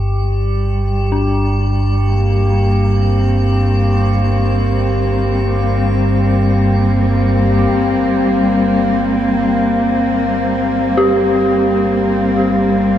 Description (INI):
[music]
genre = dark ambient drone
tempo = 64 BPM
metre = 4/4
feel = straight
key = G minor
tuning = A4 = 440 Hz
[part]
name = dark detuned synth bell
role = arpeggios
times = 0.0-13.0 s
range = D4 to G4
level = -20 LUFS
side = left 1 dB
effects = chorus, diffuse ambient delay
[part]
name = deep rumbling drone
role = drone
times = 0.0-13.0 s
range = G1 to G2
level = -17 LUFS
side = equal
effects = built-in reverb, wide subtle chorus
[part]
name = metallic inharmonic drone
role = texture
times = 0.0-7.7 s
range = G4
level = -23 LUFS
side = equal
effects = chorus, built-in reverb
[part]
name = dark studio cello section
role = sustained chords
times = 0.2-13.0 s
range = G3 to C4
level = -16 LUFS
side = left 1 dB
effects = none
[sound]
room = wet cathedral reverb, RT60 5.3 s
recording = none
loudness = -12 LUFS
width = side -11 dB against mid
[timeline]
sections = 0.0-7.7 A section; 7.7-13.0 B section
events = fade-in on synth drone 0.0-7.7; filter sweep on synth drone 7.7-13.0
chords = 0.0 Gm